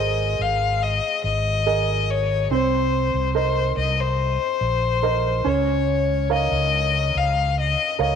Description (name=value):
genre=pop ballad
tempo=71 BPM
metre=4/4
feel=straight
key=unclear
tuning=A4 = 440 Hz
part: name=rich violin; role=melody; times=0.0-8.2 s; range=C5 to F5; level=-22 LUFS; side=left 8 dB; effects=none
part: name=clear upright piano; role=accompaniment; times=0.0-8.2 s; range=Ab3 to F5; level=-25 LUFS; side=right 12 dB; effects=none
part: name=fretless electric bass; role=bass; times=0.0-8.2 s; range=Ab1 to Db2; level=-24 LUFS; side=equal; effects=analog chorus
room=light reverb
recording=1960s-style stereo with parts hard left and right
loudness=-19 LUFS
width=side -7 dB against mid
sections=0.0-8.2 A section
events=none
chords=0.0 Abadd9; 2.5 Cm7; 5.5 Db6